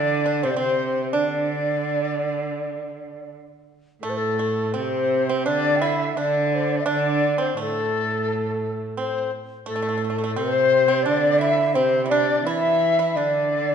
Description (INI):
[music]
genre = chinese traditional, Chinese chamber ensemble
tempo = 85 BPM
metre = 4/4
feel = rubato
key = unclear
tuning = A4 = 440 Hz
[part]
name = bright reedy low xiao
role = melody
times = 0.0-13.7 s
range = A4 to G5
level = -25 LUFS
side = right 1 dB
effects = none
[part]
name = bright cello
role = second line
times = 0.0-13.7 s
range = A2 to E3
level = -27 LUFS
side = right 5 dB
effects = none
[part]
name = large dizi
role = second line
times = 0.0-13.7 s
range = A4 to E5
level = -24 LUFS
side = left 6 dB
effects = none
[part]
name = pipa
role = second line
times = 0.0-13.7 s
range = A3 to E4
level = -28 LUFS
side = right 5 dB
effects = none
[sound]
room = wet scoring stage reverb, RT60 1.7 s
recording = nothing above 10.3 kHz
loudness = -20 LUFS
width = side -7 dB against mid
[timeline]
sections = 0.0-4.0 A section; 4.0-13.7 B section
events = none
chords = none